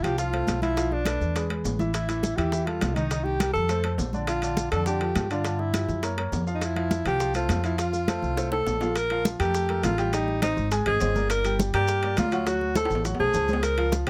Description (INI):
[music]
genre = Afro-Cuban jazz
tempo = 205 BPM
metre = 4/4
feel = straight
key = F major, Bb major from 9.0 s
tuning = A4 = 440 Hz
[part]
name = warm alto saxophone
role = melody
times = 0.0-14.1 s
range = D4 to Bb4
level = -29 LUFS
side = equal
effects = none
[part]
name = warm baby grand piano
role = accompaniment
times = 0.0-14.1 s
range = D3 to Ab5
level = -33 LUFS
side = equal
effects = none
[part]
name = upright bass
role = bass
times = 0.0-14.1 s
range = G1 to G2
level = -31 LUFS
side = equal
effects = none
[part]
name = bongos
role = percussion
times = 0.0-14.1 s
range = none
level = -38 LUFS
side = equal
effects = none
[part]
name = congas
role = percussion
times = 0.0-14.1 s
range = none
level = -33 LUFS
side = equal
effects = none
[part]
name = maracas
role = percussion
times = 0.0-14.1 s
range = none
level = -43 LUFS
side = equal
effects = none
[part]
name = timbales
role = percussion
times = 0.0-14.1 s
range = none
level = -37 LUFS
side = equal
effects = none
[sound]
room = little or no reverb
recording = close, detailed microphones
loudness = -26 LUFS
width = mono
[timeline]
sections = 0.0-9.0 A section; 9.0-14.1 B section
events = drum fill 8.4-9.0, 12.8-13.6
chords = 0.0 F; 0.8 Bm7b5; 1.4 E; 1.9 Am7; 3.1 Cm7; 3.7 F; 4.3 Bbmaj7; 5.4 G5; 6.0 Gb; 6.6 Fmaj7; 9.0 Bb5; 10.1 Am7b5; 10.7 Abadd9; 11.3 Gm7; 12.5 D7